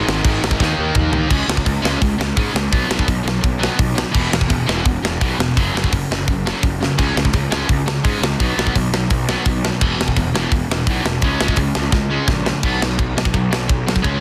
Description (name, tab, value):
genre	punk rock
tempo	169 BPM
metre	4/4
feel	straight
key	unclear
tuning	A4 = 442 Hz
part	distorted electric guitar	riff	0.0-14.2 s	E2 to D#4	-24 LUFS	equal	overdrive
part	fuzz picked electric bass	bass	0.1-14.2 s	E1 to G#2	-24 LUFS	equal	overdrive
part	tight metal drum kit	drums	0.1-14.1 s	crash cymbal, hi-hat, kick drum, ride cymbal, snare drum, toms	-21 LUFS	equal	none
room	little or no reverb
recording	dense, heavily limited modern master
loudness	-18 LUFS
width	mono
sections	0.0-1.3 A section; 1.3-12.6 B section; 12.6-14.2 C section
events	drum fill 0.6-1.3, 6.8, 11.9-12.6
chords	0.0 G#5; 0.6 D#5; 1.3 C#5; 2.7 B5; 4.1 E5; 5.6 F#5; 7.0 C#5; 8.4 B5; 9.8 E5; 11.2 C#5; 12.6 B5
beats	0.24 0.60 0.95 | 1.31 1.66 2.02 2.37 | 2.73 3.08 3.44 3.79 | 4.15 4.50 4.86 5.21 | 5.57 5.92 6.28 6.63 | 6.98 7.34 7.69 8.05 | 8.40 8.76 9.11 9.46 | 9.82 10.17 10.52 10.88 | 11.23 11.59 11.94 12.29 | 12.64 13.00 13.35 13.70 | 14.06